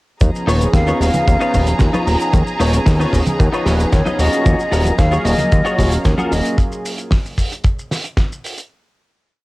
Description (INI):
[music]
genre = nu-disco, nu disco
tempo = 113 BPM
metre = 4/4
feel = straight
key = Eb minor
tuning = A4 = 439 Hz
[part]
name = warm analog pad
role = accompaniment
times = 0.2-6.6 s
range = F3 to F5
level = -23 LUFS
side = equal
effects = chorus, cassette tape, sidechain pumping
[part]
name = warm symphonic violin section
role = sustained chords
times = 0.2-6.6 s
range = Ab4 to Bb5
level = -26 LUFS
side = equal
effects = sidechain pumping
[part]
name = fat analog bass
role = bass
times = 0.2-6.4 s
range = Eb1 to Eb2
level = -16 LUFS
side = equal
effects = none
[part]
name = damped 70s drum kit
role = drums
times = 0.2-8.7 s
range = hi-hat, shaker, snare drum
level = -25 LUFS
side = right 1 dB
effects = cassette tape
[part]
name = kick drum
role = drums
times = 0.2-8.3 s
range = none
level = -16 LUFS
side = equal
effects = cassette tape
[part]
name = cabasa and congas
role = percussion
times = 0.2-6.6 s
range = none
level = -26 LUFS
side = right 1 dB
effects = none
[part]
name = direct-recorded clean electric guitar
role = riff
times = 0.5-6.5 s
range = Eb4 to Eb5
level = -22 LUFS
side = left 2 dB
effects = ensemble chorus
[part]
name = breathy mellow silver concert flute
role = melody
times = 0.7-6.6 s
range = Db5 to F5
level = -21 LUFS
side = left 1 dB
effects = cassette tape
[sound]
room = light reverb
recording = home recording on cassette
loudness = -13 LUFS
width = side -20 dB against mid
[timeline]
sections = 0.2-8.7 drop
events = drop 0.2-8.7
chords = 0.2 Db9/Eb; 4.2 Ebm11